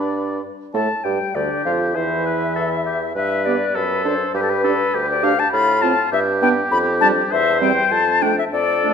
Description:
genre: quick classical-period movement for wind quintet.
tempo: 100 BPM.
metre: 2/4.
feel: rubato.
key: unclear.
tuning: A4 = 439 Hz.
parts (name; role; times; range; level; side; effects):
silver concert flute; melody; 0.0-8.9 s; A4 to B5; -20 LUFS; left 6 dB; none.
warm oboe; second line; 0.0-8.9 s; F4 to D5; -22 LUFS; left 1 dB; none.
warm French horn; accompaniment; 0.0-8.9 s; D3 to D4; -26 LUFS; right 2 dB; none.
warm clarinet; accompaniment; 0.0-8.9 s; C4 to B4; -27 LUFS; right 8 dB; none.
warm bassoon; bass; 0.0-8.9 s; D2 to A2; -23 LUFS; right 3 dB; none.
room: wet recital hall reverb, RT60 1.6 s.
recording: none.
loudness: -16 LUFS.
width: side -7 dB against mid.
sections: 0.7-8.9 A section.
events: none.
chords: 0.0 G; 0.7 Gsus2; 1.4 G5/D; 2.0 E5; 3.2 G; 3.8 D/F#; 4.3 G; 5.5 F/A; 6.1 G; 6.7 G7(no3)/F; 7.3 C/E; 7.9 Dm/F.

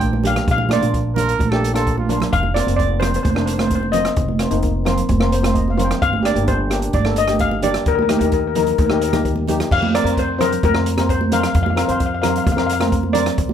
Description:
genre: calypso.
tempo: 130 BPM.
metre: 4/4.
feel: straight.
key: unclear.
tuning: A4 = 441 Hz.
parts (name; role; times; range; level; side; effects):
steel pan; melody; 0.0-13.5 s; Bb4 to G5; -21 LUFS; left 3 dB; none.
steel pan; accompaniment; 0.0-13.4 s; Bb3 to G5; -22 LUFS; left 2 dB; none.
upright bass; bass; 0.0-13.5 s; F1 to F2; -22 LUFS; equal; none.
open jazz drum kit; drums; 0.0-13.5 s; crash cymbal, hi-hat, kick drum, rim click; -23 LUFS; equal; none.
congas; percussion; 0.1-13.5 s; none; -23 LUFS; right 6 dB; none.
breathy trumpet; second line; 1.2-2.2 s; F4 to Bb4; -22 LUFS; right 4 dB; none.
room: moderate small room ambience, RT60 0.5 s.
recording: none.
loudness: -15 LUFS.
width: side -9 dB against mid.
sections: 0.0-9.7 A section; 9.7-13.5 A section.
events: drum fill 2.0-2.3; steel pan fill 5.1-6.0.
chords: 0.0 Bb; 2.3 F7sus4; 6.0 Gm; 7.9 Eb; 9.7 Fsus4.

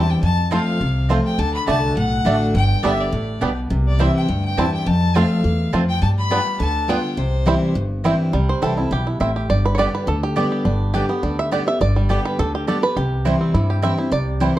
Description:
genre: bluegrass.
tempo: 207 BPM.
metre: 4/4.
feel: swing 53% on 8ths.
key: C major.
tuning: A4 = 440 Hz.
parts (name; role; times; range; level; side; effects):
clear fiddle; melody; 0.0-7.8 s; C5 to B5; -25 LUFS; left 3 dB; none.
picked steel-string acoustic guitar; accompaniment; 0.0-14.6 s; F2 to G4; -21 LUFS; left 1 dB; none.
mandolin; stabs; 0.0-14.5 s; A3 to A5; -26 LUFS; right 3 dB; none.
upright bass; bass; 0.0-14.5 s; G1 to G2; -21 LUFS; equal; none.
bluegrass banjo; melody; 0.5-14.6 s; G3 to E5; -23 LUFS; right 3 dB; none.
room: moderate large studio reverb, RT60 1.0 s.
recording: dark, warm production.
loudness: -17 LUFS.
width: side -14 dB against mid.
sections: 0.0-8.3 A section; 8.3-14.6 B section.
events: five-string banjo solo 8.3-14.6.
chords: 0.2 F; 1.4 D; 2.5 G; 3.7 C; 4.9 F; 6.0 G7; 7.2 C; 9.5 G; 13.0 C.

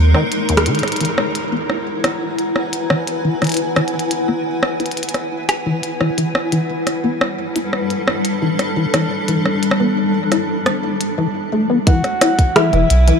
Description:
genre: IDM.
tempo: 87 BPM.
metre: 4/4.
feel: straight.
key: unclear.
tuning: A4 = 442 Hz.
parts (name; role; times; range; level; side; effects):
warbly nostalgic lead; melody; 0.0-0.1, 11.9-13.2 s; A#4 to F#5; -22 LUFS; right 2 dB; chorus, tape echo.
granular cloud pad; sustained chords; 0.0-13.2 s; G3 to A#5; -20 LUFS; left 1 dB; built-in reverb.
warm sub bass; bass; 0.0-0.1, 12.7-13.1 s; E1 to D#2; -12 LUFS; right 1 dB; none.
deep acid bass; arpeggios; 0.1-13.2 s; D#2 to E4; -21 LUFS; left 2 dB; wide subtle chorus, tape echo.
glitchy drum kit; drums; 0.1-13.2 s; hi-hat, rim click; -21 LUFS; equal; studio reverb, tape echo.
electronic kick drum; drums; 11.9-12.5 s; none; -12 LUFS; right 1 dB; studio reverb.
room: moderate huge ambient reverb, RT60 7.0 s.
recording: dark, warm production.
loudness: -15 LUFS.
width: side -6 dB against mid.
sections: 0.8-11.9 A section; 11.9-13.2 B section.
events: break 0.1-0.8; drum fill 0.5-0.8; band accent 0.6-0.9; filter sweep on acid bass 0.8-11.9.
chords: 0.0 G#sus2; 0.8 E; 6.4 Gsus2; 11.9 E5.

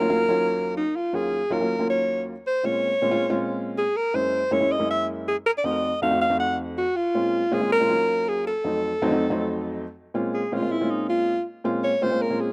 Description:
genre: jazz.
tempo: 160 BPM.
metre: 4/4.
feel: straight.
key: Bb minor.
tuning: A4 = 436 Hz.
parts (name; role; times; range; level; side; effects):
warm alto saxophone; melody; 0.0-12.5 s; Eb4 to Gb5; -25 LUFS; equal; none.
dark upright piano; accompaniment; 0.0-12.5 s; Eb2 to Gb4; -28 LUFS; equal; slapback echo.
room: little or no reverb.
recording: recorded outdoors, with no room sound.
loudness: -24 LUFS.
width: mono.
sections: 0.0-10.1 A section; 10.1-12.5 B section.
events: alto saxophone solo 10.1-12.5.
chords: 0.0 Ebm7; 2.6 Bbm7; 4.1 Gb7; 5.6 F7b9; 7.1 Bbm7; 7.9 Ebm7; 8.6 F7b9; 10.1 Bbm7.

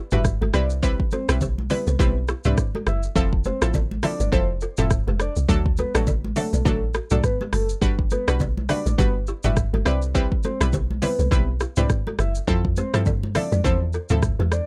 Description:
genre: afrobeats.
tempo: 103 BPM.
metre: 4/4.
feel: swing 58% on 16ths.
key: G major.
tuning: A4 = 444 Hz.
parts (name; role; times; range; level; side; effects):
balafon; riff; 0.0-14.6 s; E4 to E5; -35 LUFS; equal; delay.
soft octave-layered synth lead; melody; 0.1-14.7 s; A4 to E5; -32 LUFS; equal; chorus, phaser.
analog pluck; accompaniment; 0.1-14.3 s; F3 to B4; -29 LUFS; equal; chorus.
woody log drum bass; bass; 0.1-14.6 s; E1 to G2; -26 LUFS; equal; none.
afro-pop drum kit; drums; 0.1-14.7 s; hi-hat, kick drum, rim click, shaker, toms; -26 LUFS; equal; none.
congas; percussion; 0.1-14.5 s; none; -34 LUFS; equal; none.
room: little or no reverb.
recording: faint mains hum.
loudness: -22 LUFS.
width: mono.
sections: 0.0-14.7 A section.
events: none.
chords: 0.0 Gmaj7; 3.2 Fmaj7; 5.5 Gmaj7; 12.5 Fmaj7.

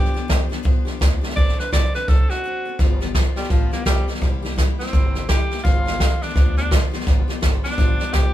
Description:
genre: rockabilly.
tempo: 168 BPM.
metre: 4/4.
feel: swing 61% on 8ths.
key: G mixolydian.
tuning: A4 = 440 Hz.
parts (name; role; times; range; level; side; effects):
clear tenor saxophone; melody; 0.0-8.3 s; F3 to D5; -26 LUFS; equal; none.
picked steel-string acoustic guitar; accompaniment; 0.0-8.3 s; G2 to A4; -30 LUFS; left 7 dB; none.
upright bass; bass; 0.0-8.3 s; G1 to G2; -26 LUFS; equal; none.
jazz brush drum kit; drums; 0.1-8.2 s; hi-hat, kick drum, snare drum; -18 LUFS; equal; none.
room: moderate studio reverb, RT60 0.6 s.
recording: band playing live in one room.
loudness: -17 LUFS.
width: side -13 dB against mid.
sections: 0.0-2.8 A section; 2.8-8.3 B section.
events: break 2.4-2.8; tenor saxophone solo 2.8-8.3.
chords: 0.0 G7; 1.4 D7; 2.8 G7; 4.2 C7; 5.6 G7.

